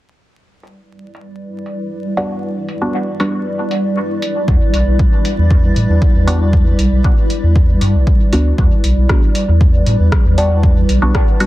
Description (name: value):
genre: dub techno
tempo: 117 BPM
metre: 4/4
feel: straight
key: E minor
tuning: A4 = 439 Hz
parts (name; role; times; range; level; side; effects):
- granular cloud pad; sustained chords; 1.3-11.5 s; G3 to D5; -20 LUFS; equal; built-in reverb, sidechain pumping
- punchy analog drum machine; drums; 0.6-11.5 s; hi-hat, rim click; -24 LUFS; equal; low-pass filter on hats, low-pass filter on snare, low-pass filter on room
- filtered dub chord stab; stabs; 2.2-11.5 s; G3 to F#4; -21 LUFS; equal; chorus, phaser, cassette tape, sidechain pumping, dub echo
- soft dub sub bass; bass; 4.5-11.1 s; B1 to A2; -13 LUFS; equal; sidechain pumping
- electronic kick drum; drums; 4.5-11.3 s; none; -13 LUFS; equal; none
room: light reverb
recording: dense, heavily limited modern master, vinyl crackle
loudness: -11 LUFS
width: side -16 dB against mid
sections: 0.4-8.6 A section; 8.6-11.5 B section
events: filter sweep on drum 0.4-8.6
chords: 0.4 Em7